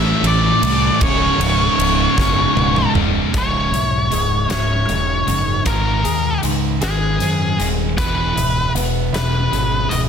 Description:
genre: quiet-loud alternative rock.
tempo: 52 BPM (dotted quarters).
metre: 6/8.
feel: straight.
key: C# minor.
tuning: A4 = 440 Hz.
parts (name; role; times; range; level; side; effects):
octave-fuzz lead guitar; melody; 0.0-10.0 s; G#4 to E5; -20 LUFS; equal; distortion, slapback echo.
scooped high-gain guitar; riff; 0.0-10.1 s; C#2 to A3; -23 LUFS; left 9 dB; distortion.
thick fuzz guitar; riff; 0.0-10.1 s; C#2 to A3; -24 LUFS; right 9 dB; distortion.
thick fuzz guitar; riff; 0.0-3.3 s; C#2 to A3; -23 LUFS; equal; distortion.
growling fingered electric bass; bass; 0.0-10.1 s; C#1 to F#2; -22 LUFS; equal; overdrive.
huge arena drum kit; drums; 0.2-10.1 s; hi-hat, kick drum, ride cymbal, snare drum, toms; -22 LUFS; equal; none.
electric guitar through a small old amp; arpeggios; 3.3-10.1 s; C#2 to G#4; -28 LUFS; left 1 dB; wide subtle chorus.
room: light reverb, studio ambience.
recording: dense, heavily limited modern master.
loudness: -15 LUFS.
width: side -7 dB against mid.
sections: 0.0-3.3 A section; 3.3-10.1 B section.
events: drum fill 2.2-3.3.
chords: 0.0 Am; 1.0 C#5; 3.3 C#m; 5.7 G#; 8.0 E.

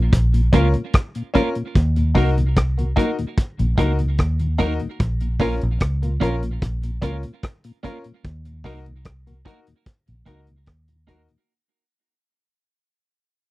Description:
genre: roots reggae.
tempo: 74 BPM.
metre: 4/4.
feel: straight.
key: unclear.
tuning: A4 = 440 Hz.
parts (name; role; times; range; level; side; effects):
vintage muted fingered electric bass; bass; 0.0-11.3 s; Bb1 to Eb2; -20 LUFS; equal; none.
vintage drum kit; drums; 0.1-11.5 s; hi-hat, kick drum, rim click; -18 LUFS; equal; none.
mellow tonewheel organ; accompaniment; 0.3-11.4 s; Eb2 to Eb4; -27 LUFS; left 3 dB; slow rotary speaker.
clean electric guitar; accompaniment; 0.5-11.2 s; Bb3 to Bb4; -25 LUFS; right 6 dB; tape echo.
bright baby grand piano; stabs; 0.5-11.3 s; Db4 to Bb4; -25 LUFS; left 3 dB; none.
room: little or no reverb.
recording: dry, close 1970s-style studio recording.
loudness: -18 LUFS.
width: side -18 dB against mid.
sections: 0.0-11.5 A section.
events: fade-out 0.0-11.5.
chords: 0.0 Bbm; 1.8 Ebm; 5.0 Bbm; 8.2 Ebm.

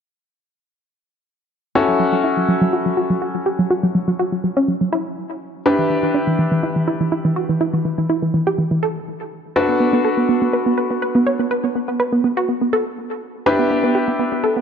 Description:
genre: house.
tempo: 123 BPM.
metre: 4/4.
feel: straight.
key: E dorian.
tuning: A4 = 440 Hz.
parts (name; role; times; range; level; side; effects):
wide unison pluck; arpeggios; 1.8-14.6 s; E3 to C#5; -18 LUFS; right 1 dB; dub echo.
clear grand piano; stabs; 1.8-14.6 s; C#4 to B4; -20 LUFS; left 2 dB; dub echo.
room: wet concert hall reverb, RT60 1.8 s, small room ambience.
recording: none.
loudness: -16 LUFS.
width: side -7 dB against mid.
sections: 1.8-14.6 A section.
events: filter sweep on synth pluck 1.8-14.6.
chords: 1.8 F#m7; 5.7 Em7; 9.6 Bm7; 13.5 Em7.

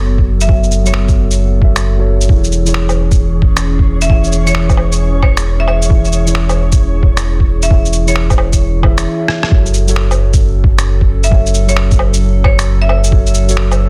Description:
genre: future garage.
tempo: 133 BPM.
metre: 4/4.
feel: swing 65% on 16ths.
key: F# minor.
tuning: A4 = 442 Hz.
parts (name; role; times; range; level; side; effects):
muted felt-like synth keys; accompaniment; 0.0-13.9 s; E3 to E5; -23 LUFS; equal; chorus, sidechain pumping, dub echo.
warbly tape-like pad; sustained chords; 0.0-13.9 s; E3 to A4; -27 LUFS; equal; chorus, built-in reverb, phaser, sidechain pumping.
warm sub bass; bass; 0.0-13.9 s; E1 to F#1; -16 LUFS; equal; tube saturation.
electronic kick drum; drums; 0.2-13.2 s; none; -13 LUFS; equal; studio reverb.
marimba with hard mallets; melody; 0.4-1.1, 4.0-8.3, 11.2-13.0 s; C#5 to E5; -23 LUFS; equal; digital delay.
electronic shaker, finger snaps, woodblock and rim click; drums; 0.4-13.8 s; none; -21 LUFS; equal; studio reverb, soft clipping on snare.
flickering grainy texture; texture; 3.0-9.1 s; C#5; -33 LUFS; equal; built-in reverb.
room: little or no reverb.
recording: dense, heavily limited modern master.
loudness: -12 LUFS.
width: mono.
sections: 0.0-9.5 A section; 9.5-13.9 B section.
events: stop 9.1-9.5; drum fill 9.3.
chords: 0.0 F#m; 2.3 C#m/E; 9.5 F#m.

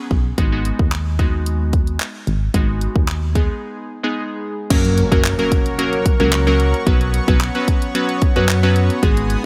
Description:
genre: dance-pop.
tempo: 111 BPM.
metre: 4/4.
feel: straight.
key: G# minor.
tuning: A4 = 439 Hz.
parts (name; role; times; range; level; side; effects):
glassy digital keys; accompaniment; 0.0-9.3 s; F#3 to B4; -23 LUFS; equal; chorus, sidechain pumping.
solid FM bass; bass; 0.1-9.4 s; G#1 to F#2; -21 LUFS; equal; sidechain pumping.
pop drum kit; drums; 0.1-9.4 s; crash cymbal, handclaps, hi-hat, kick drum; -21 LUFS; equal; none.
soft supersaw; sustained chords; 4.7-9.5 s; B3 to D#6; -29 LUFS; equal; sidechain pumping.
impact; sound effects; 4.9-6.9 s; none; -32 LUFS; equal; none.
room: little or no reverb.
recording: none.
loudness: -18 LUFS.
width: mono.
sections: 0.0-4.7 A section; 4.7-9.5 B section.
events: break 3.6-4.7; impact 4.7-6.9.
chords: 0.4 G#m7; 4.7 F#; 6.9 Bsus2.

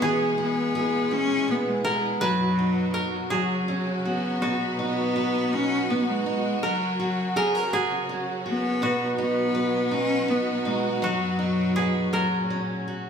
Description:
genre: six-eight pop ballad.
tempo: 54 BPM (dotted quarters).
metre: 6/8.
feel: straight.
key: B major.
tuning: A4 = 437 Hz.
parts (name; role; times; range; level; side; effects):
clear cello; melody; 0.0-12.5 s; F#3 to C#4; -26 LUFS; left 2 dB; none.
koto; second line; 0.0-13.1 s; E4 to B4; -30 LUFS; right 1 dB; none.
picked steel-string acoustic guitar; accompaniment; 0.0-13.1 s; B2 to B4; -27 LUFS; right 1 dB; none.
clear studio string section; sustained chords; 0.0-13.1 s; F#2 to G#4; -31 LUFS; equal; none.
room: wet large studio reverb, RT60 1.1 s.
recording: band playing live in one room.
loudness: -22 LUFS.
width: side -7 dB against mid.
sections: 0.0-13.1 A section.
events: none.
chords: 0.0 E; 2.2 B/F#; 3.3 F#5; 4.4 B; 6.6 F#; 8.8 B; 11.0 B/F#; 12.1 F#.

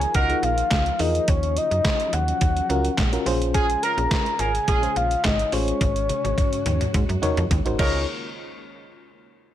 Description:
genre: early-eighties boogie funk.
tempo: 106 BPM.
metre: 4/4.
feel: straight.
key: Db major.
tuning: A4 = 441 Hz.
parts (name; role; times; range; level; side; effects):
soft octave-layered synth lead; melody; 0.0-8.1 s; Db5 to Bb5; -25 LUFS; left 2 dB; chorus.
soft string machine; sustained chords; 0.0-8.1 s; Db3 to Gb4; -34 LUFS; equal; ensemble chorus.
slap-like FM bass; bass; 0.0-8.1 s; Ab1 to Ab2; -25 LUFS; equal; none.
detuned 8-bit digital drum machine; drums; 0.0-7.9 s; crash cymbal, handclaps, hi-hat, kick drum, snare drum, toms; -24 LUFS; equal; gated reverb.
mellow horn section; second line; 0.1-8.0 s; F3 to Bb4; -29 LUFS; right 3 dB; tape echo.
FM electric piano with auto-pan; accompaniment; 0.3-8.1 s; Db4 to Db5; -27 LUFS; left 1 dB; none.
room: little or no reverb.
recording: none.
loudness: -20 LUFS.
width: side -11 dB against mid.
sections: 0.0-8.1 A section; 8.1-9.5 B section.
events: drum fill 5.8-8.1.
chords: 0.0 Db69; 1.3 Ebm9; 3.3 Bbm9; 5.8 Ab7sus4; 7.8 Db69; 8.1 N.C..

